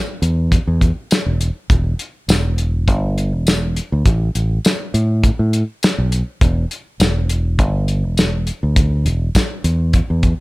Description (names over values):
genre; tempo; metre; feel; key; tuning
straight-eighth soul blues; 102 BPM; 4/4; swing 55% on 16ths; E minor; A4 = 439 Hz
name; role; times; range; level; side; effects
fingered electric bass; bass; 0.2-10.3 s; E1 to A2; -16 LUFS; equal; none
cloth-damped thuddy drum kit; drums; 0.2-10.4 s; hi-hat, kick drum, snare drum, tambourine; -16 LUFS; equal; none
room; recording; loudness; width
little or no reverb; none; -15 LUFS; side -22 dB against mid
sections
0.0-1.7 A section; 1.7-10.4 B section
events
none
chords
none